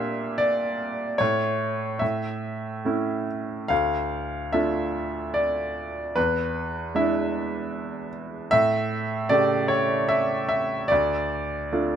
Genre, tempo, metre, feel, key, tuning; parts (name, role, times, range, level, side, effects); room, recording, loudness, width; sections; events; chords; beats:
classical, lyrical solo piano; 68-78 BPM; 3/4; rubato; D harmonic minor; A4 = 440 Hz
clear baby grand piano; solo; 0.0-12.0 s; D2 to F5; -23 LUFS; equal
light reverb; close, detailed microphones; -23 LUFS; side -9 dB against mid
0.0-12.0 A section
0.0 Gm/Bb; 1.2 N.C.; 2.0 A; 3.7 Dm; 6.2 E7; 8.5 A7; 10.9 Dm
0.40 | 1.20 2.01 2.86 | 3.71 4.54 5.36 | 6.17 6.96 7.74 | 8.52 9.30 10.10 | 10.91 11.72